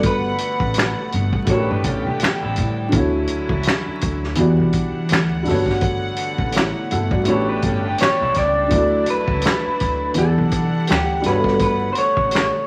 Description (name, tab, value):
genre	R&B, neo-soul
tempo	83 BPM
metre	4/4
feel	swing 57% on 16ths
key	D major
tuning	A4 = 440 Hz
part	dark upright piano	accompaniment	0.0-12.7 s	A2 to F#5	-25 LUFS	equal	none
part	clear studio string section	sustained chords	0.0-12.7 s	D3 to F#5	-29 LUFS	equal	none
part	upright bass	bass	0.0-12.5 s	G1 to A2	-26 LUFS	equal	none
part	warm soul drum kit	drums	0.0-12.5 s	finger snaps, hi-hat, kick drum, snare drum	-24 LUFS	equal	none
part	electric guitar through a small old amp	melody	0.1-1.1, 8.0-12.7 s	G4 to D5	-23 LUFS	equal	harmonic tremolo
part	electric guitar through a small old amp	second line	1.5-2.9, 7.3-8.7 s	G3 to C#5	-29 LUFS	equal	none
room	wet large studio reverb, RT60 0.9 s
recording	vinyl crackle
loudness	-19 LUFS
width	mono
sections	0.0-12.7 A section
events	none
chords	0.0 Gmaj9; 1.5 A9sus4; 2.9 Dmaj9; 4.4 Em9; 5.5 Gmaj9#11; 7.3 A9sus4; 8.7 Dadd9; 10.2 Em9; 11.2 Gmaj9#11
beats	| 0.04 0.76 1.48 2.21 | 2.93 3.65 4.37 5.10 | 5.82 6.54 7.27 7.99 | 8.71 9.43 10.16 10.88 | 11.60 12.33